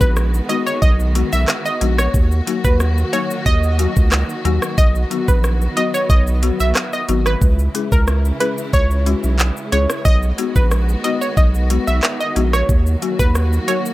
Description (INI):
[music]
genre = dancehall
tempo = 91 BPM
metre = 4/4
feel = straight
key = unclear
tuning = A4 = 441 Hz
[part]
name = analog pluck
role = melody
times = 0.0-13.8 s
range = Bb4 to Fb5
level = -22 LUFS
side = right 1 dB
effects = chorus, tape echo
[part]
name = warm studio string section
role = sustained chords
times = 0.0-13.9 s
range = Db3 to Gb4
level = -27 LUFS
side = right 1 dB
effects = sidechain pumping
[part]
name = saturated sub bass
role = bass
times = 0.0-13.6 s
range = Ab1 to Eb2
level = -17 LUFS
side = equal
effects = none
[part]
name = afro-pop drum kit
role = drums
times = 0.0-13.9 s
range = handclaps, hi-hat, kick drum, rim click, shaker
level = -17 LUFS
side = equal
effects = none
[part]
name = folk marimba with medium hard mallets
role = accompaniment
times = 0.5-13.8 s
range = Gb3 to Ab4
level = -24 LUFS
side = left 7 dB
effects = none
[sound]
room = little or no reverb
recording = none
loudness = -14 LUFS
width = side -17 dB against mid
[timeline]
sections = 0.0-13.9 A section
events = none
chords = 0.0 Abm7; 2.1 Ebm; 4.8 B; 7.4 Dbm; 10.1 Abm7; 12.7 Ebm